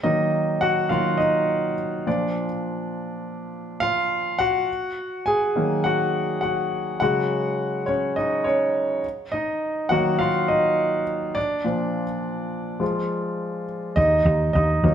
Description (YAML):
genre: piano-driven pop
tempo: 103 BPM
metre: 4/4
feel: straight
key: Eb minor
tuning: A4 = 439 Hz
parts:
  - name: clear concert grand piano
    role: accompaniment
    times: 0.0-14.9 s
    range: Bb2 to Ab5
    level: -21 LUFS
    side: equal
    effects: none
  - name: hollow-body short-scale picked electric bass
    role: bass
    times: 14.0-14.9 s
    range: Eb2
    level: -20 LUFS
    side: equal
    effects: none
room: wet large studio reverb, RT60 1.0 s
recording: band playing live in one room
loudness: -21 LUFS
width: side -8 dB against mid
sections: 0.0-14.0 A section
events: grand piano solo 0.0-14.0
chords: 0.0 Ebm; 2.1 Bb; 4.7 Ebm; 7.0 Dbsus4; 9.0 Ebm; 11.4 Bb; 12.8 Fm6; 14.0 N.C.